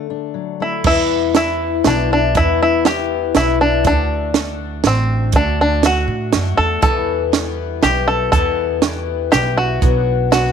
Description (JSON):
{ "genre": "indie folk with a building arrangement", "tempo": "120 BPM", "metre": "3/4", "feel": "straight", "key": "E minor", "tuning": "A4 = 441 Hz", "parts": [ { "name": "fingerpicked steel-string acoustic guitar", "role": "accompaniment", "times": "0.0-0.9 s", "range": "D3 to D4", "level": "-25 LUFS", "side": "left 13 dB", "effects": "none" }, { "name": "bluegrass banjo", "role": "melody", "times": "0.6-10.5 s", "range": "C4 to A4", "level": "-18 LUFS", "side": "right 1 dB", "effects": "none" }, { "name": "picked twelve-string acoustic guitar", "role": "accompaniment", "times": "0.8-10.5 s", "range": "E2 to G4", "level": "-20 LUFS", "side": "left 15 dB", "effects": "none" }, { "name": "upright bass", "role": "bass", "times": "0.8-10.5 s", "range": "A1 to A2", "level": "-20 LUFS", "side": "right 1 dB", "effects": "none" }, { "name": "compact cocktail drum kit", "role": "drums", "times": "0.8-10.4 s", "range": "crash cymbal, hi-hat, kick drum, snare drum", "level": "-18 LUFS", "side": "right 6 dB", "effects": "none" } ], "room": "small room ambience", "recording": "1960s-style stereo with parts hard left and right", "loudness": "-14 LUFS", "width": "side -7 dB against mid", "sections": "0.9-10.5 A section", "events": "none", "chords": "0.0 D; 0.9 Em; 3.8 D; 6.8 Em; 9.8 Bm", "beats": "0.35 | 0.85 1.35 1.85 | 2.35 2.85 3.35 | 3.84 4.34 4.84 | 5.34 5.83 6.33 | 6.83 7.33 7.83 | 8.32 8.82 9.32 | 9.82 10.32" }